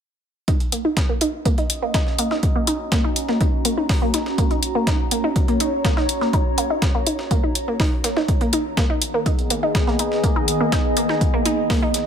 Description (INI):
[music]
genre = melodic techno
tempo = 123 BPM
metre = 4/4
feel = straight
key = Eb minor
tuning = A4 = 440 Hz
[part]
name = wide unison pluck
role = arpeggios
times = 0.5-11.9 s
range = Bb3 to Eb4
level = -23 LUFS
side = equal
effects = phaser, sidechain pumping, tape echo
[part]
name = breakbeat sampler-style drum kit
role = drums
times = 0.5-12.1 s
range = hi-hat, snare drum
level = -29 LUFS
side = right 1 dB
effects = sidechain pumping on hats, high-pass filter on hats, high-pass filter on snare
[part]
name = electronic kick drum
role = drums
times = 0.5-11.8 s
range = none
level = -20 LUFS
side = equal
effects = none
[part]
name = warbly tape-like pad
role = texture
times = 1.7-12.1 s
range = Eb3 to Bb5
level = -25 LUFS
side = equal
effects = chorus, built-in reverb, phaser, sidechain pumping
[part]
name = electronic hi-hat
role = drums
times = 0.7-12.0 s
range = none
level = -22 LUFS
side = left 2 dB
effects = sidechain pumping on hats
[sound]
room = light reverb, digital ambience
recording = none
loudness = -18 LUFS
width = side -8 dB against mid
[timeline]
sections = 0.5-12.1 A section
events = filter sweep on synth arpeggio sound 0.5-12.1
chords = 0.5 Ebm7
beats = | 0.48 0.97 1.46 1.94 | 2.43 2.92 3.41 3.90 | 4.38 4.87 5.36 5.85 | 6.33 6.82 7.31 7.80 | 8.29 8.77 9.26 9.75 | 10.24 10.72 11.21 11.70